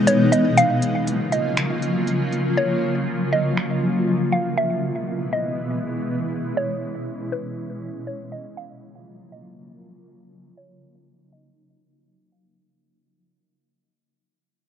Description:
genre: hip hop, atmospheric cloud-rap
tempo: 120 BPM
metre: 4/4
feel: half-time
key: F# major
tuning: A4 = 440 Hz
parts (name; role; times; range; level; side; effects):
- mallet-like synth pluck; melody; 0.0-12.6 s; B4 to E#5; -24 LUFS; equal; chorus, phaser, digital delay
- granular cloud pad; sustained chords; 0.0-12.6 s; B2 to E#4; -22 LUFS; equal; built-in reverb
- smooth R&B drum kit; drums; 0.1-3.7 s; finger snaps, hi-hat; -27 LUFS; equal; none
room: light reverb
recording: low-pass filter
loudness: -20 LUFS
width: side -8 dB against mid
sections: 0.0-12.6 A section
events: break 0.0-4.6; fade-out 0.0-12.6; filter sweep 0.0-12.6; hi-hats muted 2.6-4.6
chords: 0.0 Emaj7; 0.6 F#maj7; 4.6 E; 8.6 F#maj7

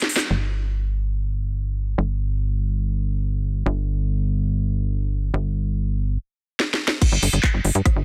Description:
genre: psychedelic trance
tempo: 143 BPM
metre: 4/4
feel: straight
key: unclear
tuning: A4 = 443 Hz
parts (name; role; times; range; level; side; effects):
- drum and bass drum kit; drums; 0.0-0.3, 6.6-7.9 s; crash cymbal, handclaps, hi-hat, rim click, snare drum; -25 LUFS; equal; none
- tight sequencer bass; bass; 0.3-8.0 s; G1 to G2; -24 LUFS; equal; none
- electronic kick drum; drums; 7.0-7.9 s; none; -20 LUFS; equal; none
room: little or no reverb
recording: dense, heavily limited modern master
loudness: -23 LUFS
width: mono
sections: 0.3-7.0 A section; 7.0-8.0 B section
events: break 0.0-0.3; drum fill 0.0-0.3, 6.6-7.0; band accent 0.2; drop 7.0-8.0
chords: none

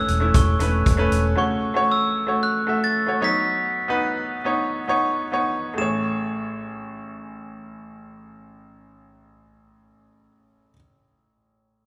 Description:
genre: piano-driven pop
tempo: 98-116 BPM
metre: 4/4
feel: straight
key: A major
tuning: A4 = 439 Hz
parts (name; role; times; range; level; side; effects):
- glockenspiel with hard plastic mallets; melody; 0.0-10.7 s; C#6 to E7; -28 LUFS; equal; none
- bright grand piano; accompaniment; 0.0-11.9 s; A1 to E5; -26 LUFS; equal; none
- vintage muted fingered electric bass; bass; 0.1-1.3 s; E1; -24 LUFS; equal; none
- loose indie drum kit; drums; 0.1-1.2 s; hi-hat, kick drum; -23 LUFS; equal; none
room: wet recital hall reverb, RT60 1.6 s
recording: recorded in a church or concert hall, faint mains hum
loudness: -22 LUFS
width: mono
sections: 0.0-5.8 A section; 5.8-10.7 B section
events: slowing down 1.4-5.8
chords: 0.0 Aadd9/E; 1.4 F#m; 3.2 Badd9/F#; 5.8 Amaj7

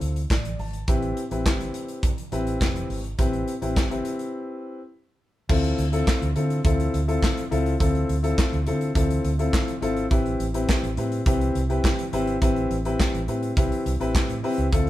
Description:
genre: early-eighties boogie funk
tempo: 104 BPM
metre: 4/4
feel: straight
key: D minor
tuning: A4 = 441 Hz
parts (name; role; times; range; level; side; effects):
- warm concert grand piano; accompaniment; 0.0-14.9 s; C4 to A5; -26 LUFS; left 2 dB; none
- vintage muted fingered electric bass; bass; 0.0-14.9 s; F1 to D3; -26 LUFS; equal; none
- modern studio drum kit; drums; 0.0-14.9 s; crash cymbal, handclaps, hi-hat, kick drum, snare drum; -25 LUFS; equal; none
room: moderate studio reverb, RT60 0.6 s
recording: band playing live in one room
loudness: -21 LUFS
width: side -14 dB against mid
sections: 0.0-5.5 A section; 5.5-14.9 B section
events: grand piano fill 0.0-0.9; break 4.3-5.5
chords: 0.0 Dm9; 0.9 Am9; 5.5 Dm9; 10.1 Am9

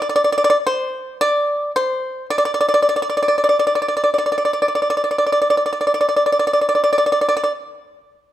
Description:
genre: chinese traditional, Chinese solo plucked strings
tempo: 50-56 BPM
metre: 4/4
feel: rubato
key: unclear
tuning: A4 = 440 Hz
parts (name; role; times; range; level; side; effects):
- pipa; solo; 0.0-7.5 s; C5 to D5; -15 LUFS; equal; none
room: light reverb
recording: none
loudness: -15 LUFS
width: side -12 dB against mid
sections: 0.0-8.3 A section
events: none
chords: none

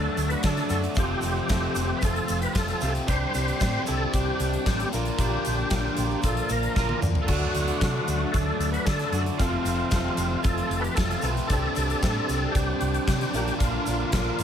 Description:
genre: classic rock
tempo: 114 BPM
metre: 4/4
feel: straight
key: unclear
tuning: A4 = 437 Hz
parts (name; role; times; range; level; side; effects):
- overdriven tonewheel organ; melody; 0.0-14.4 s; F4 to C5; -30 LUFS; left 1 dB; slow rotary speaker, chorus vibrato
- biting lead guitar; second line; 0.0-14.4 s; C4 to G4; -35 LUFS; right 5 dB; overdrive
- bright upright piano; accompaniment; 0.0-14.4 s; C4 to D5; -37 LUFS; left 2 dB; plate reverb
- crunchy overdriven guitar; riff; 0.0-14.4 s; F2 to D4; -32 LUFS; left 13 dB; phaser
- raw garage guitar; riff; 0.0-14.4 s; F2 to Bb4; -33 LUFS; right 12 dB; overdrive
- hollow-body short-scale fingered electric bass; bass; 0.0-14.4 s; F1 to D3; -29 LUFS; equal; none
- big rock drum kit; drums; 0.2-14.4 s; crash cymbal, hi-hat, kick drum, snare drum, splash cymbal, toms; -29 LUFS; equal; none
- egg shaker; percussion; 0.2-14.4 s; none; -43 LUFS; right 5 dB; none
room: light reverb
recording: none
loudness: -23 LUFS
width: side -8 dB against mid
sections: 0.0-14.4 A section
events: drum fill 6.8-7.3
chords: 0.0 D; 1.0 F; 3.1 Csus2; 4.9 Bb; 7.3 D; 9.4 F; 11.5 Csus2; 13.3 Bb

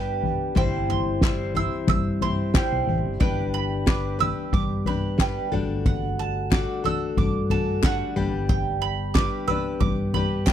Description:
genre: indie folk with a building arrangement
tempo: 91 BPM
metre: 4/4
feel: straight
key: G major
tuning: A4 = 440 Hz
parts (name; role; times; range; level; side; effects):
- picked old ladder-braced acoustic guitar; accompaniment; 0.0-10.5 s; G3 to C5; -29 LUFS; left 7 dB; none
- mellow tonewheel organ; sustained chords; 0.0-10.5 s; D3 to G4; -35 LUFS; right 3 dB; slow rotary speaker
- bowl-back mandolin; arpeggios; 0.0-10.5 s; F#5 to E6; -29 LUFS; right 10 dB; none
- hollow-body short-scale fingered electric bass; bass; 0.0-10.5 s; G1 to G2; -28 LUFS; equal; none
- soft-mallet drum kit; drums; 0.2-10.5 s; kick drum, snare drum, toms; -24 LUFS; equal; none
- group handclap; percussion; 1.2-10.5 s; none; -31 LUFS; left 17 dB; none
room: small room ambience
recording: dry, close 1970s-style studio recording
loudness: -21 LUFS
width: side -10 dB against mid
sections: 0.0-10.5 A section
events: none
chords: 0.0 G; 0.6 C/G; 3.2 G; 5.5 D/G; 8.2 G

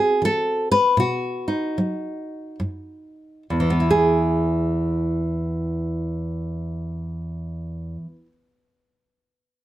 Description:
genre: folk, solo fingerstyle acoustic guitar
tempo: 65-81 BPM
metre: 3/4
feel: swing 63% on 8ths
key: E major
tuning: A4 = 442 Hz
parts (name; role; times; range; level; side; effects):
- nylon-string guitar; solo; 0.0-8.3 s; E2 to B4; -20 LUFS; equal; none
room: light reverb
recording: none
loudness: -21 LUFS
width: side -13 dB against mid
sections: 0.0-3.5 A section; 3.5-9.0 B section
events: slowing down 0.0-3.5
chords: 0.0 Am; 1.0 B; 3.5 E

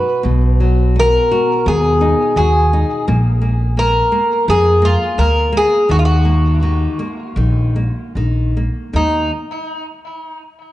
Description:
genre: fado-style ballad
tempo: 74-86 BPM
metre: 4/4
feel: rubato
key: Eb harmonic minor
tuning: A4 = 440 Hz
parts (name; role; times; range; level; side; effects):
- Greek bouzouki; melody; 0.0-9.3 s; Eb4 to B4; -16 LUFS; equal; tape echo
- flamenco guitar; accompaniment; 0.0-9.3 s; B2 to F#4; -22 LUFS; left 2 dB; none
- upright bass; bass; 0.2-9.3 s; Bb1 to F2; -15 LUFS; equal; none
room: moderate recital hall reverb, RT60 1.8 s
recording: dark, warm production, nothing above 11.0 kHz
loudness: -12 LUFS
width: side -15 dB against mid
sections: 0.0-8.9 A section; 8.9-10.7 B section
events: none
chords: 0.0 B; 3.1 Bb; 5.9 Ebm; 8.9 Eb5

